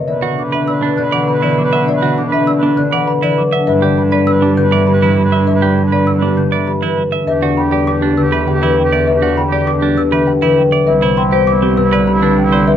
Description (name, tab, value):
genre	classical, minimalist pattern music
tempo	100 BPM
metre	3/4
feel	straight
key	B phrygian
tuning	A4 = 435 Hz
part	marimba with soft mallets	melody	0.0-12.8 s	G4 to D6	-18 LUFS	left 7 dB	none
part	concert harp	accompaniment	0.0-12.8 s	C3 to E4	-16 LUFS	left 1 dB	none
part	trough xylophone with soft rubber mallets	arpeggios	0.0-12.8 s	Eb5 to G6	-24 LUFS	left 2 dB	none
part	warm oboe	second line	0.1-12.7 s	E4 to B4	-23 LUFS	right 2 dB	none
part	rich cello	bass	0.1-12.8 s	C2 to B2	-18 LUFS	right 3 dB	none
part	semi-hollow electric guitar	arpeggios	0.2-12.7 s	C4 to E5	-20 LUFS	right 9 dB	none
room	light reverb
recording	dark, warm production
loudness	-11 LUFS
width	side -10 dB against mid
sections	0.1-12.8 A section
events	none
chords	0.1 Bm; 3.7 G; 7.3 Emadd9; 10.9 Cmaj7